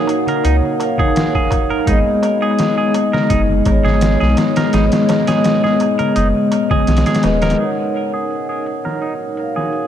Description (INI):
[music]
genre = trip hop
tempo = 84 BPM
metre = 4/4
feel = swing 53% on 16ths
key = Eb minor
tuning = A4 = 440 Hz
[part]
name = vibraphone with medium mallets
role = accompaniment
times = 0.0-9.9 s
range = Ab3 to Gb5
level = -16 LUFS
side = left 1 dB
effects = harmonic tremolo, tape echo
[part]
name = deep dark ambient pad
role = sustained chords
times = 0.0-9.9 s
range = Ab3 to Db5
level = -23 LUFS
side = equal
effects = chorus, built-in reverb
[part]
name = clean electric guitar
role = arpeggios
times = 0.0-9.9 s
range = Eb4 to Bb4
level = -23 LUFS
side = right 3 dB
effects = low-pass filter, tape echo
[part]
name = trip hop sampler-style drum kit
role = drums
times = 0.1-9.9 s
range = hi-hat, kick drum, snare drum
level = -20 LUFS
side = equal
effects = overdrive, low-pass filter on hats, low-pass filter on kick, low-pass filter on snare, low-pass filter on room, dub echo
[part]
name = darbuka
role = percussion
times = 0.1-7.6 s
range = none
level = -29 LUFS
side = right 2 dB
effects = dub echo
[part]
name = soft dub sub bass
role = bass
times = 0.4-7.6 s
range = Eb1 to Db2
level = -16 LUFS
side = equal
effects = tube saturation
[sound]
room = light reverb, digital ambience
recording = echo-heavy mix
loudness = -13 LUFS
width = side -10 dB against mid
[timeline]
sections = 0.0-7.6 A section; 7.6-9.9 B section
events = filter sweep on clean electric guitar 7.6-9.9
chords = 0.0 Ebm7; 1.9 Abm; 7.6 Ebm7